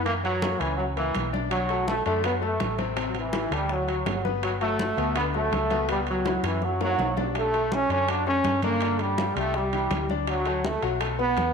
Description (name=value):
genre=latin, salsa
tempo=164 BPM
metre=4/4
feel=straight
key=unclear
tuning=A4 = 438 Hz
part: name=bright grand piano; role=accompaniment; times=0.0-11.5 s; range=B2 to D5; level=-31 LUFS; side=left 9 dB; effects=none
part: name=hollow-body short-scale fingered electric bass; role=bass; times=0.0-11.5 s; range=G1 to G2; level=-31 LUFS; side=right 1 dB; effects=none
part: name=bright trombone section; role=melody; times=0.1-11.5 s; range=E3 to D4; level=-26 LUFS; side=right 1 dB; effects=slapback echo
part: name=congas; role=percussion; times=0.1-11.5 s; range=none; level=-35 LUFS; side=equal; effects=none
part: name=timbales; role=percussion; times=0.1-11.5 s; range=none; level=-36 LUFS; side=right 12 dB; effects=none
part: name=bongos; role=percussion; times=1.5-11.5 s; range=none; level=-38 LUFS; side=left 11 dB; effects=none
room=wet echo chamber reverb, RT60 1.7 s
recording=1960s-style stereo with parts hard left and right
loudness=-23 LUFS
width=side -6 dB against mid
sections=0.0-11.5 A section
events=drum fill 6.4-7.3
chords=0.1 F#7b13; 1.5 Bm7; 3.0 Am; 3.7 D; 4.4 Gmaj7; 5.9 Esus2/C#; 6.6 F#; 7.3 Bm9; 8.8 G5; 9.5 Cadd9; 10.3 D; 11.0 Esus4/B